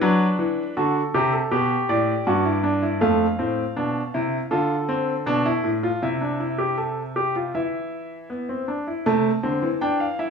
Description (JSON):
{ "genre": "classical, baroque-style 3-part fugue for grand piano", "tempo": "80 BPM", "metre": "4/4", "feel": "straight", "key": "G major, A minor from 3.0 s", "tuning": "A4 = 441 Hz", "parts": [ { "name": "bright concert grand piano", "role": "solo", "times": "0.0-10.3 s", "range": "F2 to A5", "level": "-20 LUFS", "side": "equal", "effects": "none" } ], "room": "moderate stone room reverb, RT60 1.4 s", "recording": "small room reverb", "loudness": "-20 LUFS", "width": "side -6 dB against mid", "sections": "0.0-3.0 A section; 3.0-9.1 B section; 9.1-10.3 C section", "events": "none", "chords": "0.0 D; 1.5 G; 3.0 Dm/F; 4.5 Dm; 6.0 Am/C; 7.5 E5; 9.1 Am/C", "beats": "| 0.01 0.76 1.51 2.26 | 3.01 3.77 4.51 5.26 | 6.02 6.78 7.54 8.30 | 9.06 9.81" }